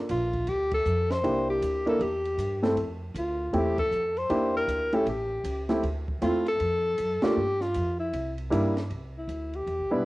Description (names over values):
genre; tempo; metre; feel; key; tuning
jazz, small-group swing and bop; 157 BPM; 4/4; swing 64% on 8ths; F major; A4 = 440 Hz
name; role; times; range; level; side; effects
warm baby grand piano; accompaniment; 0.0-10.0 s; G3 to Bb4; -27 LUFS; equal; cassette tape
breathy alto saxophone; melody; 0.1-10.1 s; E4 to C5; -28 LUFS; left 1 dB; cassette tape
upright bass; bass; 0.1-10.0 s; A1 to G2; -33 LUFS; equal; tube saturation
compact cocktail drum kit; drums; 0.1-9.8 s; hi-hat, kick drum, ride cymbal, snare drum; -40 LUFS; right 1 dB; cassette tape
room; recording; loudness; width
moderate spring reverb, RT60 1.3 s, small room ambience; home recording on cassette; -25 LUFS; side -19 dB against mid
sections
0.0-8.9 A section; 8.9-10.1 B section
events
band accent 0.7, 3.7, 7.2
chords
0.0 Gm7 (rootless); 1.2 C7; 2.8 Fmaj7; 4.3 Em7b5; 5.1 A7; 5.8 Dm7; 7.4 Fsus2; 8.1 C7; 8.9 Cmaj9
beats
0.09 0.47 0.85 | 1.24 1.62 2.00 2.39 | 2.77 3.15 3.54 3.92 | 4.30 4.69 5.07 5.45 | 5.83 6.22 6.60 6.98 | 7.37 7.75 8.13 8.51 | 8.90 9.28 9.66 10.05